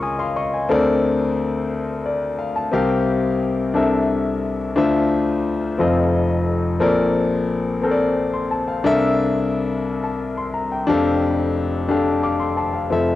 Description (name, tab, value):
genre	gospel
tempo	59 BPM (dotted quarters)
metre	6/8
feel	straight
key	F major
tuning	A4 = 437 Hz
part	warm concert grand piano	solo	0.0-13.2 s	F1 to Eb6	-18 LUFS	left 2 dB	cassette tape
room	moderate spring reverb, RT60 2.5 s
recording	home recording on cassette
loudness	-18 LUFS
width	side -14 dB against mid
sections	0.0-12.9 A section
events	grand piano fill 0.0-0.7, 11.9-12.9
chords	0.0 Db69; 0.7 Bbmaj9/D; 2.7 C7sus4; 3.8 C13; 4.8 Dm9; 5.8 F7; 6.8 Bbmaj9; 8.8 C13; 10.9 F69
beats	| 0.70 1.72 | 2.74 3.76 | 4.78 5.80 | 6.81 7.83 | 8.85 9.86 | 10.88 11.89 | 12.91